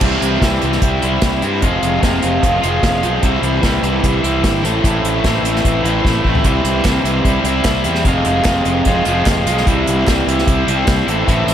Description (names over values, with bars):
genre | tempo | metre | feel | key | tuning
indie rock | 149 BPM | 4/4 | straight | C major | A4 = 442 Hz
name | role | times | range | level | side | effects
overdriven semi-hollow guitar | riff | 0.0-11.5 s | F2 to F4 | -15 LUFS | equal | none
fuzz fingered electric bass | bass | 0.0-11.5 s | F1 to G2 | -20 LUFS | equal | overdrive
unplugged drum kit | drums | 0.0-11.5 s | crash cymbal, hi-hat, kick drum, snare drum, toms | -18 LUFS | equal | none
group handclap | percussion | 6.8-11.0 s | none | -28 LUFS | right 4 dB | none
room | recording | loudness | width
light reverb | none | -13 LUFS | side -10 dB against mid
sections
0.0-11.5 A section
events
drum fill 6.0-6.5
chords
0.0 C; 1.6 Fm; 3.2 C; 4.6 Am; 6.5 C; 8.1 Fm; 9.7 C